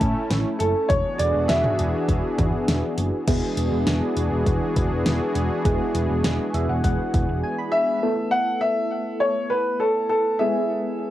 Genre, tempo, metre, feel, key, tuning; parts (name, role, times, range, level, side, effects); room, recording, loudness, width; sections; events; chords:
synth-pop; 101 BPM; 4/4; straight; A4 = 440 Hz
warm baby grand piano; melody; 0.0-2.9, 7.7-11.1 s; A4 to A5; -22 LUFS; equal; cassette tape, tape echo
warm analog pad; sustained chords; 0.0-8.0 s; E3 to G#4; -26 LUFS; left 1 dB; chorus, cassette tape
hollow-body short-scale picked electric bass; bass; 0.0-7.4 s; E1 to A2; -25 LUFS; equal
deep house drum kit; drums; 0.0-7.3 s; crash cymbal, hi-hat, kick drum, snare drum, toms; -24 LUFS; equal; cassette tape
soft electric-piano-like synth keys; accompaniment; 3.3-11.1 s; G#3 to B5; -26 LUFS; equal; chorus, phaser, cassette tape
moderate booth ambience, RT60 0.3 s; home recording on cassette; -20 LUFS; side -13 dB against mid
0.0-3.3 A section; 3.3-8.0 B section; 8.0-11.1 C section
synth keys fill 6.2-8.0; silent gap 7.4-8.0
0.0 A; 0.9 E7; 8.0 Asus2; 10.4 E